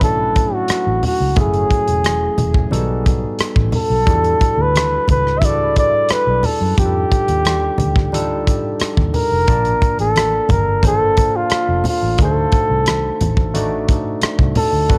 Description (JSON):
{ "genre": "lush 1970s-style soul", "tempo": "89 BPM", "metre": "4/4", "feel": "straight", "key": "unclear", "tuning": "A4 = 440 Hz", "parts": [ { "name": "warm flugelhorn", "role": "melody", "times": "0.0-15.0 s", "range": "F4 to E5", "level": "-20 LUFS", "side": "equal", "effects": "cassette tape, analog delay" }, { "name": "barky tine electric piano", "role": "accompaniment", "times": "0.0-15.0 s", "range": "F#3 to A5", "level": "-26 LUFS", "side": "equal", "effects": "overdrive, cassette tape" }, { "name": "vintage muted fingered electric bass", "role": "bass", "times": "0.0-15.0 s", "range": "E1 to F#2", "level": "-23 LUFS", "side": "equal", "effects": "none" }, { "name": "modern studio drum kit", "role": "drums", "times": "0.0-15.0 s", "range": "hi-hat, kick drum, rim click", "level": "-21 LUFS", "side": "equal", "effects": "none" }, { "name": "congas", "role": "percussion", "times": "0.0-15.0 s", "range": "none", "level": "-26 LUFS", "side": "equal", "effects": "none" } ], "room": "small room ambience", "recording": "home recording on cassette", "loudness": "-16 LUFS", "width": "mono", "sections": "0.0-15.0 A section", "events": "none", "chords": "0.0 Dmaj7; 1.4 F#m9; 2.7 B7b13; 4.1 Em11; 6.8 F13; 9.5 Bbmaj7; 12.2 D7b9" }